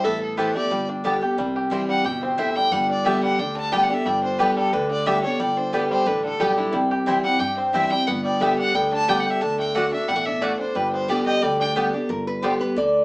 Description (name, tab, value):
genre	bluegrass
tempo	179 BPM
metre	4/4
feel	straight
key	G major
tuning	A4 = 439 Hz
part	clear fiddle	melody	0.0-11.7 s	E4 to A5	-25 LUFS	equal	none
part	lap resonator guitar	second line	0.0-0.9, 12.1-13.0 s	E4 to D5	-23 LUFS	equal	none
part	picked steel-string acoustic guitar	accompaniment	0.0-13.0 s	G2 to G4	-25 LUFS	equal	none
part	bluegrass banjo	arpeggios	0.0-12.5 s	D3 to G4	-24 LUFS	equal	none
part	upright bass	bass	0.0-13.0 s	G1 to G2	-33 LUFS	equal	none
part	mandolin	stabs	0.4-12.5 s	A3 to A5	-24 LUFS	equal	none
room	wet studio reverb, RT60 0.5 s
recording	heard from further back in the room, small speaker sound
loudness	-19 LUFS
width	side -24 dB against mid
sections	0.0-1.4 A section; 1.4-12.1 B section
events	none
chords	0.0 Asus2; 0.7 Gadd9; 1.4 C; 2.7 G; 6.7 C; 8.1 G; 9.4 D; 10.8 G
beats	| 0.04 0.38 0.71 1.04 | 1.38 1.72 2.05 2.39 | 2.72 3.06 3.39 3.73 | 4.06 4.40 4.73 5.07 | 5.40 5.74 6.07 6.40 | 6.74 7.07 7.41 7.74 | 8.08 8.41 8.75 9.08 | 9.42 9.75 10.09 10.42 | 10.76 11.09 11.43 11.76 | 12.10 12.43 12.77